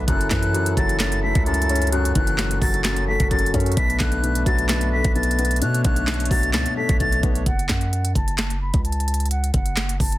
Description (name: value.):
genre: hip hop, trap.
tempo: 130 BPM.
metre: 4/4.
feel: half-time.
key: unclear.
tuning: A4 = 440 Hz.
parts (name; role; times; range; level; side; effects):
felt-muted upright piano; accompaniment; 0.0-7.5 s; F#2 to C#4; -26 LUFS; left 4 dB; low-pass filter.
hand-pumped harmonium; sustained chords; 0.0-7.4 s; F#3 to C#5; -29 LUFS; right 3 dB; none.
hard-hitting 808-style bass; bass; 0.0-10.2 s; F#1 to B2; -23 LUFS; equal; none.
bright reedy concert flute; melody; 0.1-10.2 s; F#5 to B6; -26 LUFS; left 1 dB; low-pass filter, digital delay.
trap drum kit; drums; 0.1-10.2 s; handclaps, hi-hat, kick drum, snare drum; -22 LUFS; equal; overdrive.
room: studio reverb.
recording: dense, heavily limited modern master.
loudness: -18 LUFS.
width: side -16 dB against mid.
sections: 0.0-7.5 A section; 7.5-10.2 B section.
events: none.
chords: 0.1 F#m7; 3.8 Bm7; 7.5 F#m.